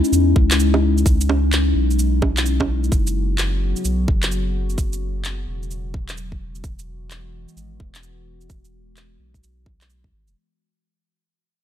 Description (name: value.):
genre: future garage.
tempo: 129 BPM.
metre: 4/4.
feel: swing 63% on 16ths.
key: unclear.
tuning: A4 = 440 Hz.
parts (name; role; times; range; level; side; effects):
warbly tape-like pad; sustained chords; 0.0-10.3 s; C#3 to F#4; -23 LUFS; left 4 dB; chorus, built-in reverb, sidechain pumping.
warm sub bass; bass; 0.0-10.3 s; E1 to E2; -21 LUFS; equal; sidechain pumping.
electronic shaker, handclaps and bongos; drums; 0.0-10.3 s; none; -24 LUFS; right 2 dB; none.
electronic kick drum; drums; 0.4-10.1 s; none; -20 LUFS; equal; none.
room: light reverb, digital ambience.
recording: none.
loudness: -17 LUFS.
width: side -10 dB against mid.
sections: 0.0-10.4 A section.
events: fade-out 0.0-10.4.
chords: 0.0 C#madd9; 2.9 F#sus4; 6.6 Eadd9.